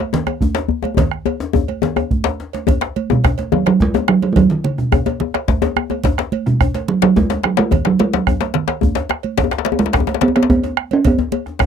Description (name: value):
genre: west african traditional, West African drum ensemble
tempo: 143 BPM (dotted quarters)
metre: 12/8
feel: straight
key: B major pentatonic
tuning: A4 = 443 Hz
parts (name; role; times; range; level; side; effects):
- congas; percussion; 0.0-11.4 s; none; -24 LUFS; right 7 dB; none
- djembe; percussion; 0.1-11.7 s; none; -24 LUFS; left 3 dB; none
- djembe; percussion; 0.1-11.7 s; none; -19 LUFS; left 11 dB; none
- bombo; percussion; 0.3-11.7 s; none; -19 LUFS; right 2 dB; none
- cowbell; percussion; 0.3-11.7 s; none; -27 LUFS; right 24 dB; none
- talking drum; melody; 3.1-11.7 s; B2 to C#4; -15 LUFS; right 3 dB; none
room: light reverb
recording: dry, close 1970s-style studio recording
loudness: -14 LUFS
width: side -8 dB against mid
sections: 0.0-2.7 A section; 2.7-11.7 B section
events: drum fill 1.0-2.7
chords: none